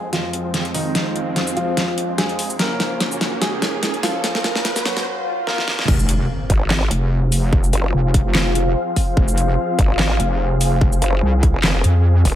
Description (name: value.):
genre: heavy wobble dubstep.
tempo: 146 BPM.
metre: 4/4.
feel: swing 54% on 16ths, half-time.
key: F phrygian.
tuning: A4 = 440 Hz.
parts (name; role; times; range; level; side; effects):
dark grand piano; melody; 0.0-5.7 s; Eb3 to Bb4; -26 LUFS; equal; dub echo.
supersaw chords; sustained chords; 0.0-12.4 s; F2 to F5; -28 LUFS; right 1 dB; phaser, sidechain pumping, low-pass filter.
riser, swell and impact; sound effects; 1.7-7.5 s; none; -28 LUFS; equal; none.
deep dark ambient pad; texture; 0.0-12.4 s; F4 to Ab5; -27 LUFS; left 1 dB; chorus, built-in reverb, sidechain pumping.
dubstep drum kit; drums; 0.1-12.3 s; crash cymbal, handclaps, hi-hat, shaker, snare drum; -21 LUFS; equal; overdrive.
wobble bass; bass; 5.9-12.2 s; F1 to F2; -17 LUFS; equal; chorus, overdrive.
electronic kick drum; drums; 5.9-12.3 s; none; -17 LUFS; equal; overdrive.
vowel-sweep wobble bass; bass; 6.5-12.4 s; F1 to Ab1; -19 LUFS; equal; chorus, overdrive.
room: light reverb.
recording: high-pass filter.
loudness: -16 LUFS.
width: side -12 dB against mid.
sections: 0.0-5.9 A section; 5.9-12.4 B section.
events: build-up 0.0-5.9; drum fill 0.0-5.1, 5.5-5.9; filter sweep on supersaw synth 0.0-5.9; filter sweep 0.0-5.9; riser 1.7-5.1; swell 5.1-5.9; drop 5.9-12.4; impact 5.9-7.5.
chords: 0.0 Fm; 2.6 Gb; 5.9 Fm.